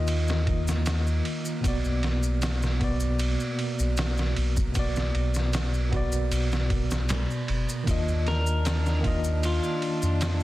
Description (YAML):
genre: trip hop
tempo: 77 BPM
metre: 4/4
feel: straight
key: unclear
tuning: A4 = 441 Hz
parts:
  - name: bright tine electric piano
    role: accompaniment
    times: 0.0-10.4 s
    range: B2 to Eb5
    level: -29 LUFS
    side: equal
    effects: medium stereo tremolo, tape echo
  - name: soft dub sub bass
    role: bass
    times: 0.0-10.4 s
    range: F#1 to F2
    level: -26 LUFS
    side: equal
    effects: tube saturation
  - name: bowed-like drone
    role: texture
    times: 0.0-7.9 s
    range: Bb3 to Bb4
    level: -40 LUFS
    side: right 2 dB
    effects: built-in reverb
  - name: trip hop sampler-style drum kit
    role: drums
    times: 0.1-10.4 s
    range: kick drum, ride cymbal, snare drum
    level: -30 LUFS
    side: equal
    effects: small room ambience
  - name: maracas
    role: percussion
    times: 0.1-10.4 s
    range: none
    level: -41 LUFS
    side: left 1 dB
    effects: none
  - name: warm studio string section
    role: sustained chords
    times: 7.9-10.4 s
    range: D4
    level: -36 LUFS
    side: equal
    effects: none
  - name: clean electric guitar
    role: melody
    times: 8.3-10.4 s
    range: F4 to Bb4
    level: -32 LUFS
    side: left 1 dB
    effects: spring reverb, tape echo
room: light reverb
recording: dense, heavily limited modern master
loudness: -24 LUFS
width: side -16 dB against mid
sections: 0.0-10.4 A section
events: none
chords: 0.0 Ebsus2; 1.6 Bm; 7.9 Ebsus2